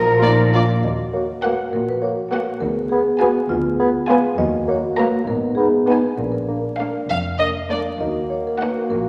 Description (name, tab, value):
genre	cinematic, playful, whimsical film cue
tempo	67 BPM (dotted quarters)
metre	6/8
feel	straight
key	Eb minor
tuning	A4 = 439 Hz
part	marimba with medium mallets	melody	0.0-9.1 s	Eb4 to F5	-26 LUFS	equal	none
part	clear oboe	second line	0.0-0.5 s	Bb5	-28 LUFS	equal	none
part	dark clarinet	second line	0.0-9.1 s	D4 to Ab4	-33 LUFS	equal	none
part	large flute ensemble	second line	0.0-0.5 s	Bb5	-29 LUFS	equal	none
part	rich chamber violin section	second line	0.0-8.8 s	D4 to Bb4	-37 LUFS	equal	none
part	mellow bassoon	accompaniment	0.0-9.1 s	F3 to B3	-27 LUFS	equal	none
part	dark French horn section	sustained chords	0.0-9.1 s	Bb3 to Bb4	-26 LUFS	equal	none
part	rich chamber double bass section	bass	0.0-9.1 s	F1 to Eb2	-29 LUFS	equal	none
part	rich symphonic cello section	bass	0.0-9.1 s	D2 to Eb3	-32 LUFS	equal	none
part	rich chamber violin section	melody	0.2-8.8 s	D5 to Bb5	-28 LUFS	equal	none
part	warm chamber viola section	accompaniment	0.2-8.8 s	Bb3 to F4	-29 LUFS	equal	none
room	wet recital hall reverb, RT60 1.7 s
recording	vinyl crackle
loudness	-20 LUFS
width	mono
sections	0.8-9.1 A section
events	none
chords	0.0 Bb; 0.8 Ebm; 2.6 Ddim7; 4.4 Ebm; 5.3 Abm; 6.2 Bb; 8.0 Ebm